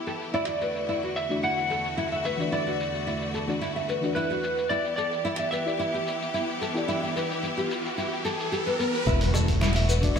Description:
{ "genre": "organic downtempo", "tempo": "110 BPM", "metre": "4/4", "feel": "swing 53% on 16ths", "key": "unclear", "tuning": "A4 = 440 Hz", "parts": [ { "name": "bright studio string section", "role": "sustained chords", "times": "0.0-10.2 s", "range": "E2 to G4", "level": "-32 LUFS", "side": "equal", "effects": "sidechain pumping" }, { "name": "nylon-string guitar", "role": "arpeggios", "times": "0.1-10.2 s", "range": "B3 to E5", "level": "-30 LUFS", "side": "left 1 dB", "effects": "lush chorus, low-pass filter, ping-pong delay" }, { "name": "dusty soul sampler-style drum kit", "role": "drums", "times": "0.1-10.2 s", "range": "hi-hat, shaker, snare drum, woodblock", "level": "-35 LUFS", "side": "left 1 dB", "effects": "low-pass filter on perc, low-pass filter on hats, low-pass filter on snare, gated reverb" }, { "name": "electric slide guitar", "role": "melody", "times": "0.3-8.5 s", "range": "B4 to F#5", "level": "-30 LUFS", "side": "equal", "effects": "lush chorus, ping-pong delay" }, { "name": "deep mellow chord stab", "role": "accompaniment", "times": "1.3-10.2 s", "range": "E3 to D5", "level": "-33 LUFS", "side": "left 3 dB", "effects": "chorus, sidechain pumping, ping-pong delay" }, { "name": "riser and impact", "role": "sound effects", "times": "6.0-10.2 s", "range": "none", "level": "-32 LUFS", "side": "equal", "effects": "none" }, { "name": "fretless electric bass", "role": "bass", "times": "9.1-10.2 s", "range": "E1", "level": "-23 LUFS", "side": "equal", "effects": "analog chorus" }, { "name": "electronic kick drum", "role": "drums", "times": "9.1-10.1 s", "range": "none", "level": "-29 LUFS", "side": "equal", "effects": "none" } ], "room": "moderate plate reverb, RT60 1.7 s", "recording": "bright 1980s-style digital production", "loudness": "-24 LUFS", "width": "side -7 dB against mid", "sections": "0.0-9.1 A section; 9.1-10.2 B section", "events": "riser 6.0-9.1; impact 9.1-10.2", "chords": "0.3 D/E; 4.7 Em7; 9.1 D/E" }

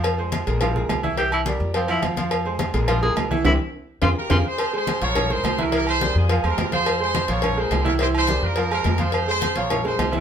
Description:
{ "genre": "latin, salsa", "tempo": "211 BPM", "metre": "4/4", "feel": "straight", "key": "F harmonic minor", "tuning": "A4 = 439 Hz", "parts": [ { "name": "bright concert grand piano", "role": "accompaniment", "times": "0.0-10.2 s", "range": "E3 to F5", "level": "-26 LUFS", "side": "right 3 dB", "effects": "none" }, { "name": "upright bass", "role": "bass", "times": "0.0-10.2 s", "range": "Bb1 to F2", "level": "-24 LUFS", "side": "left 1 dB", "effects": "none" }, { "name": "agogo bells and timbales", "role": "percussion", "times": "0.0-10.1 s", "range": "none", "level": "-28 LUFS", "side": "right 5 dB", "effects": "none" }, { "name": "congas", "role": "percussion", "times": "0.0-10.2 s", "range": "none", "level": "-30 LUFS", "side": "left 3 dB", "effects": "none" }, { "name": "cowbell", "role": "percussion", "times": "0.0-10.1 s", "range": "none", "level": "-28 LUFS", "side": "left 5 dB", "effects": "none" }, { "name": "clear tenor saxophone", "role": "melody", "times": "1.2-4.4 s", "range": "C4 to Ab4", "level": "-24 LUFS", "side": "left 1 dB", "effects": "none" }, { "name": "bright horn section", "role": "melody", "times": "4.2-10.2 s", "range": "F4 to Db5", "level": "-24 LUFS", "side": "right 1 dB", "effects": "none" } ], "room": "moderate studio reverb, RT60 0.7 s", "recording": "band playing live in one room", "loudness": "-19 LUFS", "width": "side -8 dB against mid", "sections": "0.0-4.6 A section; 4.6-10.2 B section", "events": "tenor saxophone solo 0.0-4.6; drum fill 3.5-4.6; band accent 3.5-4.6", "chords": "0.0 Bb5; 1.2 C7; 1.8 Fm; 2.9 Bb5; 3.5 C; 4.0 Fm; 5.2 Bb5; 5.7 C7; 6.3 Bb5; 8.0 C7; 8.6 Fm" }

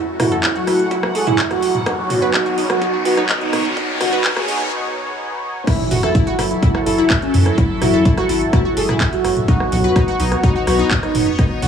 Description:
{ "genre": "melodic techno", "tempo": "126 BPM", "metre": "4/4", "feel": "straight", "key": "F# dorian", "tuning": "A4 = 439 Hz", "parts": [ { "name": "sweeping resonant pad", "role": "sustained chords", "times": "0.0-11.7 s", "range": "F#3 to F#5", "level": "-25 LUFS", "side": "equal", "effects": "chorus, sidechain pumping" }, { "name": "riser and impact", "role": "sound effects", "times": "0.0-7.6 s", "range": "none", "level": "-26 LUFS", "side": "left 1 dB", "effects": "none" }, { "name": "wide unison lead", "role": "melody", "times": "0.2-11.7 s", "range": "C#4 to G#4", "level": "-20 LUFS", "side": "right 1 dB", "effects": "lush chorus, sidechain pumping, dub echo" }, { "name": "analog pluck", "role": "arpeggios", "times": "0.2-11.7 s", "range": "D#4 to E5", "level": "-23 LUFS", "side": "equal", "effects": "chorus, sidechain pumping, tape echo" }, { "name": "house drum kit", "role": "drums", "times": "0.2-11.7 s", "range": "crash cymbal, handclaps, hi-hat, rim click, toms", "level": "-22 LUFS", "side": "equal", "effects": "none" }, { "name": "electronic kick drum", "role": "drums", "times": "0.4-11.5 s", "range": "none", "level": "-16 LUFS", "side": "equal", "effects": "high-pass filter on kick, high-pass filter on room" }, { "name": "round analog bass", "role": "bass", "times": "5.9-11.7 s", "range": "F#1 to F#2", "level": "-20 LUFS", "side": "equal", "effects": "sidechain pumping" } ], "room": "light reverb, digital ambience", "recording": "high-pass filter, small room ambience", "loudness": "-14 LUFS", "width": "side -7 dB against mid", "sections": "0.0-5.7 A section; 5.7-11.7 B section", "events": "build-up 0.0-5.7; riser 0.0-4.7; filter sweep on synth pluck 0.0-5.7; filter sweep 0.0-5.7; break 4.7-5.7; drop 5.7-11.7; impact 5.7-7.6", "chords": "0.0 F#m7; 1.9 Badd9; 5.7 F#m7; 9.5 Badd9" }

